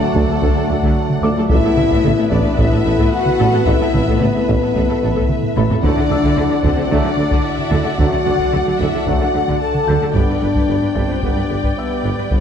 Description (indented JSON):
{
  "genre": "cinematic, hybrid orchestral and electronic film score",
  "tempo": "111 BPM",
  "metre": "4/4",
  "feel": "straight",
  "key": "unclear",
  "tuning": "A4 = 440 Hz",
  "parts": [
    { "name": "rich symphonic violin section", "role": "melody", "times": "0.0-12.4 s", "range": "E5 to G5", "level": "-29 LUFS", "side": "left 4 dB", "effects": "none" },
    { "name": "warm symphonic violin section", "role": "second line", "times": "0.0-12.4 s", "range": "A4 to A5", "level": "-26 LUFS", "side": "left 4 dB", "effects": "none" },
    { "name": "rich symphonic viola section", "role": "accompaniment", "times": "0.0-12.4 s", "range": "A4 to D5", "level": "-26 LUFS", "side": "left 1 dB", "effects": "none" },
    { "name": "bright trombone section", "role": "sustained chords", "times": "0.0-12.4 s", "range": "E3 to B3", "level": "-26 LUFS", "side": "right 2 dB", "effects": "none" },
    { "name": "deep dark ambient pad", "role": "sustained chords", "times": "0.0-12.4 s", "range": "G3 to D5", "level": "-26 LUFS", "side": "right 1 dB", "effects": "chorus, built-in reverb" },
    { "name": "warm French horn section", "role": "sustained chords", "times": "0.0-12.4 s", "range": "A3 to A4", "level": "-20 LUFS", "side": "left 3 dB", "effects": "none" },
    { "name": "harp-like synth pluck", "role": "arpeggios", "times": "0.0-12.4 s", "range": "D3 to A4", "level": "-26 LUFS", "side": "equal", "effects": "none" },
    { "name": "rich studio cello section", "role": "bass", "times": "0.0-12.4 s", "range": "D2 to D3", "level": "-23 LUFS", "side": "right 1 dB", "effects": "none" },
    { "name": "felt-muted upright piano", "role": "texture", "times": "0.0-12.4 s", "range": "B4 to A6", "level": "-32 LUFS", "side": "left 1 dB", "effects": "ping-pong delay" },
    { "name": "rich symphonic double bass section", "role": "bass", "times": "0.1-12.4 s", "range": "G1 to D2", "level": "-23 LUFS", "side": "right 2 dB", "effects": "none" },
    { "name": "warm tuba", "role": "bass", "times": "0.2-12.4 s", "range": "G1 to D2", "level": "-25 LUFS", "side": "right 4 dB", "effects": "none" },
    { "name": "taiko ensemble", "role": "drums", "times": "0.2-12.4 s", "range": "none", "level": "-20 LUFS", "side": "equal", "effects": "none" }
  ],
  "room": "moderate scoring stage reverb, RT60 1.4 s",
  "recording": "dark, warm production",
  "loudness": "-14 LUFS",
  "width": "side -8 dB against mid",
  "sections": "0.0-12.4 A section",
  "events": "drum fill 5.3-5.8",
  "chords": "0.0 D; 1.5 Asus2; 5.8 D; 10.1 G"
}